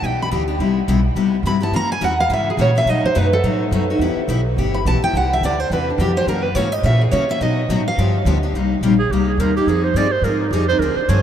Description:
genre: acoustic string swing (jazz manouche).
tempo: 212 BPM.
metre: 4/4.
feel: swing 59% on 8ths.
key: E minor.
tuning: A4 = 440 Hz.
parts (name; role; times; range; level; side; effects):
picked steel-string acoustic guitar; melody; 0.0-8.2 s; D4 to B5; -21 LUFS; right 1 dB; none.
picked steel-string acoustic guitar; accompaniment; 0.0-11.2 s; B2 to Ab4; -20 LUFS; left 3 dB; none.
upright bass; bass; 0.0-11.2 s; G1 to C#3; -20 LUFS; right 1 dB; none.
breathy clarinet; second line; 9.0-11.2 s; Eb4 to D5; -19 LUFS; right 6 dB; none.
room: moderate huge ambient reverb, RT60 9.5 s.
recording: in a vast, echoing space.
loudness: -15 LUFS.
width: side -9 dB against mid.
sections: 0.0-8.5 A section; 8.5-11.2 A section.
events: steel-string acoustic guitar solo 0.0-8.5; clarinet solo 8.5-11.2.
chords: 0.0 Em7; 0.6 Cmaj7; 1.7 F#7; 2.9 B7; 4.0 Em; 5.1 Cadd9; 6.3 F#7; 7.4 B; 8.0 G7; 8.5 Cm7; 9.7 Fm7.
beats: 0.03 0.32 | 0.60 0.88 1.17 1.45 | 1.74 2.02 2.30 2.59 | 2.87 3.16 3.44 3.73 | 4.01 4.29 4.58 4.86 | 5.14 5.43 5.71 6.00 | 6.28 6.56 6.85 7.13 | 7.41 7.70 7.98 8.26 | 8.55 8.83 9.11 9.39 | 9.68 9.96 10.24 10.53 | 10.81 11.09.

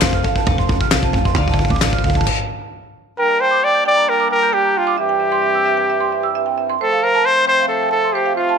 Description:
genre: indie folk with a building arrangement.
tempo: 133 BPM.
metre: 4/4.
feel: straight.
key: G dorian.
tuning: A4 = 441 Hz.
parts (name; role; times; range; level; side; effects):
picked twelve-string acoustic guitar; accompaniment; 0.0-2.3 s; D3 to A4; -26 LUFS; left 14 dB; none.
marimba with hard mallets; arpeggios; 0.0-8.6 s; C5 to G6; -20 LUFS; right 13 dB; none.
hollow-body short-scale fingered electric bass; bass; 0.0-2.2 s; F1 to D2; -22 LUFS; equal; none.
loose indie drum kit; drums; 0.0-2.4 s; crash cymbal, kick drum, snare drum, toms; -18 LUFS; equal; none.
group handclap; percussion; 0.0-1.9 s; none; -22 LUFS; left 16 dB; none.
mellow trumpet; melody; 3.2-8.6 s; F4 to D5; -15 LUFS; left 1 dB; slapback echo.
hand-pumped harmonium; sustained chords; 3.2-8.6 s; G2 to D4; -26 LUFS; left 14 dB; none.
room: light reverb, small room ambience.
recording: 1960s-style stereo with parts hard left and right.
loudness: -14 LUFS.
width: side -6 dB against mid.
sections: 0.0-3.2 A section; 3.2-8.6 B section.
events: build-up 0.0-3.2; drum fill 0.0-2.3; stop 2.3-3.2.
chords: 0.0 F; 1.4 Dm; 3.2 Gm; 5.0 C/G; 6.8 F.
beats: 0.02 0.47 0.93 | 1.38 1.83 2.28 2.73 | 3.18 3.63 4.08 4.53 | 4.98 5.43 5.88 6.34 | 6.79 7.24 7.69 8.14.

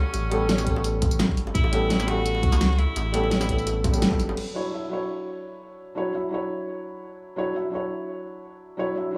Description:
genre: liquid drum and bass.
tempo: 170 BPM.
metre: 4/4.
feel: straight.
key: D major.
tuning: A4 = 440 Hz.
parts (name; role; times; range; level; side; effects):
edgy tenor saxophone; melody; 0.0-4.0 s; C#4 to F#4; -34 LUFS; equal; analog delay.
felt-muted upright piano; accompaniment; 0.0-9.2 s; F#3 to E5; -30 LUFS; equal; vintage 12-bit sampler grit, diffuse ambient delay.
warm sub bass; bass; 0.0-4.4 s; G1 to C#2; -28 LUFS; equal; tube saturation.
pop drum kit; drums; 0.1-4.4 s; crash cymbal, hi-hat, snare drum, tambourine; -29 LUFS; equal; studio ambience.
bongos; percussion; 0.1-4.4 s; none; -39 LUFS; equal; none.
electronic kick drum; drums; 0.7-4.2 s; none; -27 LUFS; equal; studio ambience.
room: moderate plate reverb, RT60 1.1 s, small room ambience.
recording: dreamy mix soaked in reverb.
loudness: -25 LUFS.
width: mono.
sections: 0.0-4.4 A section; 4.4-9.2 B section.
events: drop 0.0-4.4; band accent 4.0.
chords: 0.0 A9; 4.4 Dmaj9.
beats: | 0.14 0.49 0.84 1.20 | 1.55 1.90 2.25 2.61 | 2.96 3.31 3.67 4.02 | 4.37 4.72 5.08 5.43 | 5.78 6.14 6.49 6.84 | 7.20 7.55 7.90 8.26 | 8.61 8.96.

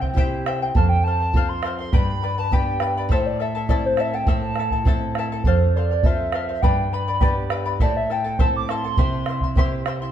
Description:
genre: andean folk, Andean ensemble.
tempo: 102 BPM.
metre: 2/4.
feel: straight.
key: A minor.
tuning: A4 = 440 Hz.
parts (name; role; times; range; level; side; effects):
hollow clarinet-like synth lead; melody; 0.0-9.9 s; C5 to D6; -25 LUFS; right 1 dB; chorus, phaser.
charango; accompaniment; 0.0-10.1 s; E4 to C6; -28 LUFS; left 5 dB; none.
nylon-string guitar; accompaniment; 0.0-10.1 s; F2 to A4; -25 LUFS; equal; none.
bombo; percussion; 0.0-10.0 s; none; -22 LUFS; right 1 dB; none.
room: wet stone room reverb, RT60 1.3 s.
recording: band playing live in one room.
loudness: -19 LUFS.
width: side -10 dB against mid.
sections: 0.0-5.4 A section; 5.4-10.1 A section.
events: none.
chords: 0.0 C; 0.7 F; 1.9 G; 3.1 Am; 5.4 F; 6.6 G; 7.8 Am; 9.0 C.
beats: 0.16 | 0.75 1.33 | 1.92 2.51 | 3.10 3.69 | 4.27 4.86 | 5.45 6.04 | 6.62 7.21 | 7.80 8.39 | 8.98 9.57.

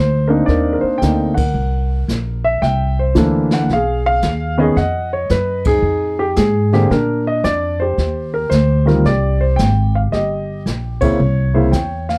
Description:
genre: jazz piano trio.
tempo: 112 BPM.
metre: 4/4.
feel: swing 66% on 8ths.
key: Eb major.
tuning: A4 = 441 Hz.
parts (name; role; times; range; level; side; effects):
warm grand piano; melody; 0.0-12.2 s; Db3 to G5; -19 LUFS; equal; none.
upright bass; bass; 0.0-12.2 s; G1 to Bb2; -20 LUFS; equal; none.
jazz brush drum kit; drums; 0.5-12.2 s; brushed snare drum, hi-hat, kick drum, ride cymbal, snare drum; -25 LUFS; equal; none.
room: light reverb.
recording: none.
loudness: -16 LUFS.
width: mono.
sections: 0.0-12.2 A section.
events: band accent 1.3, 5.6, 10.9.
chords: 0.0 Cm9; 1.5 C13; 3.7 B6; 5.8 Fm7; 6.9 Bb; 8.0 Eb6; 11.2 C(b9).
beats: 0.48 1.01 | 1.55 2.08 2.62 3.15 | 3.69 4.23 4.76 5.30 | 5.83 6.37 6.91 7.44 | 7.98 8.51 9.05 9.58 | 10.12 10.66 11.19 11.73.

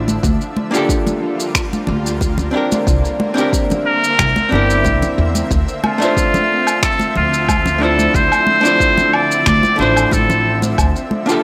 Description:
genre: sunset chillout.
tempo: 91 BPM.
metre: 4/4.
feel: straight.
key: D minor.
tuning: A4 = 439 Hz.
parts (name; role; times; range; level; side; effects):
archtop guitar, miked and amplified; accompaniment; 0.0-11.4 s; A3 to E5; -22 LUFS; equal; tape echo.
shimmering ambient pad; sustained chords; 0.0-11.4 s; D3 to E5; -26 LUFS; equal; chorus, built-in reverb.
upright bass; bass; 0.0-10.9 s; G1 to E2; -21 LUFS; equal; none.
electronic shaker, finger snaps and woodblock; drums; 0.1-11.4 s; none; -23 LUFS; equal; overdrive.
congas; percussion; 0.1-11.2 s; none; -24 LUFS; equal; none.
electronic kick drum; drums; 0.2-10.9 s; none; -22 LUFS; equal; overdrive.
trumpet with straight mute; melody; 3.9-10.6 s; F4 to D5; -18 LUFS; equal; tape echo.
room: light reverb.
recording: none.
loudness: -15 LUFS.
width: mono.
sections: 0.0-11.4 A section.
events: none.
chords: 0.2 Gm7/D; 2.5 C9; 5.5 Dm9; 10.8 Gm7/D.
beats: | 0.23 0.89 1.55 2.21 | 2.87 3.53 4.19 4.85 | 5.51 6.17 6.83 7.49 | 8.15 8.81 9.46 10.12 | 10.78.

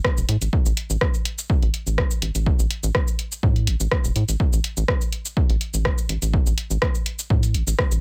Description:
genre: minimal techno.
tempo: 124 BPM.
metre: 4/4.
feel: swing 53% on 16ths.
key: unclear.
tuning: A4 = 439 Hz.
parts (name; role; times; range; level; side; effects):
electronic kick drum; drums; 0.0-7.9 s; none; -24 LUFS; equal; none.
punchy analog drum machine; drums; 0.0-8.0 s; cabasa, hi-hat, rim click; -28 LUFS; equal; none.
rubbery square bass; bass; 0.2-8.0 s; E1 to A2; -25 LUFS; equal; tube saturation, sidechain pumping.
room: little or no reverb.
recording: none.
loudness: -22 LUFS.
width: mono.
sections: 0.0-8.0 A section.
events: none.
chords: none.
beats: 0.04 | 0.53 1.01 1.50 1.98 | 2.46 2.95 3.43 3.92 | 4.40 4.88 5.37 5.85 | 6.33 6.82 7.30 7.79.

